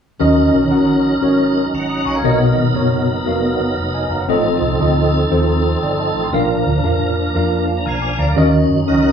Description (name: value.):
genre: uptempo gospel.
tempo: 118 BPM.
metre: 4/4.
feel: swing 64% on 8ths.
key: Eb minor.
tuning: A4 = 439 Hz.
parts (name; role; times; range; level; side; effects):
mellow tine electric piano; accompaniment; 0.2-9.1 s; A2 to F6; -16 LUFS; left 1 dB; medium stereo tremolo.
tonewheel organ; sustained chords; 0.2-9.1 s; F3 to Bb5; -19 LUFS; right 2 dB; slow rotary speaker, chorus vibrato.
hollow-body short-scale fingered electric bass; bass; 0.2-9.1 s; F1 to Gb2; -20 LUFS; equal; none.
room: moderate studio reverb, RT60 0.8 s.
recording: band playing live in one room, studio reverb.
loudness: -14 LUFS.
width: side -7 dB against mid.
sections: 0.2-8.4 A section.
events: tine electric piano fill 7.3-8.4.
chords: 0.2 Ebm7; 2.2 Bmaj7; 4.3 F7/A; 6.3 Bb; 8.4 Ebm7.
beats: | 0.20 0.71 1.22 1.73 | 2.24 2.75 3.26 3.77 | 4.29 4.80 5.31 5.82 | 6.33 6.84 7.35 7.86 | 8.37 8.88.